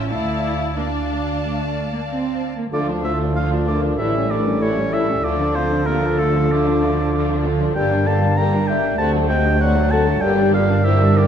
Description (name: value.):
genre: quick classical-period movement for symphony orchestra.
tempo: 89-98 BPM.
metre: 4/4.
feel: rubato.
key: D minor.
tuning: A4 = 441 Hz.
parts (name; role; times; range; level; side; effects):
warm studio violin section; melody; 0.0-11.3 s; C#4 to A5; -30 LUFS; left 2 dB; none.
warm studio violin section; second line; 0.0-11.3 s; A3 to F5; -29 LUFS; left 5 dB; none.
dark studio double bass section; bass; 0.0-11.3 s; G1 to D2; -23 LUFS; right 2 dB; none.
warm studio cello section; bass; 0.0-11.3 s; D2 to C4; -23 LUFS; right 2 dB; none.
rich studio viola section; accompaniment; 0.1-11.3 s; D3 to E4; -27 LUFS; right 2 dB; none.
clear oboe; second line; 2.7-11.3 s; A4 to Bb5; -24 LUFS; right 1 dB; none.
dark clarinet; second line; 2.7-11.3 s; A4 to C5; -27 LUFS; right 2 dB; none.
hollow large flute ensemble; second line; 2.7-11.3 s; F4 to G5; -28 LUFS; left 4 dB; none.
warm bassoon; accompaniment; 2.7-11.3 s; F3 to G3; -26 LUFS; left 1 dB; none.
mellow French horn section; sustained chords; 2.7-11.3 s; A3 to Bb4; -25 LUFS; left 4 dB; none.
room: moderate scoring stage reverb, RT60 1.6 s.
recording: dark, warm production.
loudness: -16 LUFS.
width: side -8 dB against mid.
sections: 0.0-2.7 A section; 2.7-11.3 B section.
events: none.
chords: 0.1 Dm; 4.0 A7; 5.2 Dm; 7.8 Gm; 9.0 D7; 10.2 Gm.